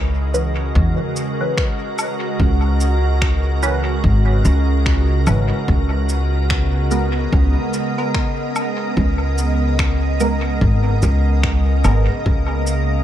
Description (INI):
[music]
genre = ambient dub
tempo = 73 BPM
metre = 4/4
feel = swing 59% on 16ths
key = unclear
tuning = A4 = 439 Hz
[part]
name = soft additive organ-like pad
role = sustained chords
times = 0.0-13.0 s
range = C#3 to D#5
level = -22 LUFS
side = right 1 dB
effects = ensemble chorus, built-in reverb
[part]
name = upright bass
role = bass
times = 0.0-13.0 s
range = G#1 to E2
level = -16 LUFS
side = equal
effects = none
[part]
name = filtered dub chord stab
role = stabs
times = 0.3-12.1 s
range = E3 to B4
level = -26 LUFS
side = right 2 dB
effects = phaser, analog chorus, dub echo
[part]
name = electronic shaker, finger snaps and woodblock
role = drums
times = 0.3-12.9 s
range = none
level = -27 LUFS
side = left 1 dB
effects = small room reverb, dub echo
[part]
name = electronic kick drum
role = drums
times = 0.8-12.5 s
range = none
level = -20 LUFS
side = equal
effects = overdrive, small room reverb
[sound]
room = digital ambience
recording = none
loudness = -15 LUFS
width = side -11 dB against mid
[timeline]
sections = 0.0-13.0 A section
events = none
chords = 0.0 C#m7; 5.7 G#madd9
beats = 0.75 1.58 | 2.40 3.22 4.04 4.86 | 5.68 6.51 7.33 8.15 | 8.97 9.79 10.62 11.44 | 12.26